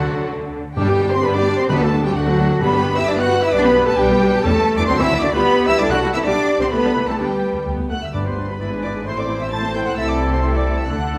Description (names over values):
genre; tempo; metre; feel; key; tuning
quick classical-period movement for symphony orchestra; 131 BPM; 2/4; straight; G major; A4 = 441 Hz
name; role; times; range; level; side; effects
rich chamber violin section; melody; 0.0-11.2 s; F#5 to A6; -27 LUFS; equal; none
small flute group; second line; 0.0-11.2 s; F#4 to A5; -30 LUFS; equal; none
warm clarinet; second line; 0.0-11.2 s; D4 to F#5; -30 LUFS; equal; none
warm oboe; second line; 0.0-0.3, 8.1-11.2 s; F#4 to D5; -37 LUFS; equal; none
warm symphonic violin section; second line; 0.0-11.2 s; F#4 to A5; -32 LUFS; equal; none
warm chamber viola section; accompaniment; 0.0-11.2 s; D3 to A4; -27 LUFS; equal; none
warm French horn section; sustained chords; 0.0-11.2 s; D3 to B4; -25 LUFS; equal; none
rich chamber cello section; bass; 0.0-11.2 s; G2 to F#4; -25 LUFS; equal; none
warm chamber double bass section; bass; 0.0-11.2 s; G1 to G2; -27 LUFS; equal; none
timpani; percussion; 0.8-3.3, 8.1-8.6 s; G2 to D3; -28 LUFS; equal; none
bright trumpet section; stabs; 8.1-11.2 s; A4 to C5; -29 LUFS; equal; none
room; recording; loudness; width
wet concert hall reverb, RT60 2.3 s; none; -18 LUFS; mono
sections
0.8-8.1 A section; 8.1-11.2 B section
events
none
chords
0.0 D; 0.8 G; 1.7 D7; 2.6 G; 3.5 G/B; 4.4 A5; 4.9 D; 5.3 G; 5.8 C; 6.3 G5; 6.7 Am/C; 7.2 G; 7.7 D5; 8.1 G; 8.6 E7/G#; 9.1 Am; 10.0 Am/C